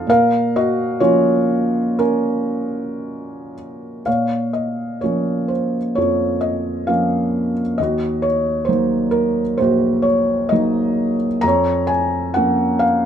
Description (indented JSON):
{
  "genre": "classical, lyrical solo piano",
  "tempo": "65 BPM",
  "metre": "4/4",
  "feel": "rubato",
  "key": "Bb minor",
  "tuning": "A4 = 442 Hz",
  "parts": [
    { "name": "felt-muted upright piano", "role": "solo", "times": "0.0-13.1 s", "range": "Bb1 to Bb5", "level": "-16 LUFS", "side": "equal", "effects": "none" }
  ],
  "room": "light reverb",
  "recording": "none",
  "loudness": "-16 LUFS",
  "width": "side -9 dB against mid",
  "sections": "0.0-4.1 A section; 4.1-13.1 B section",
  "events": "none",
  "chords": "0.1 Bbm; 7.8 Ebm; 11.4 Bbm/F",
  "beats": "| 0.09 1.02 1.98 3.04 | 4.07 5.03 5.96 6.88 | 7.79 8.69 9.59 10.52 | 11.44 12.35"
}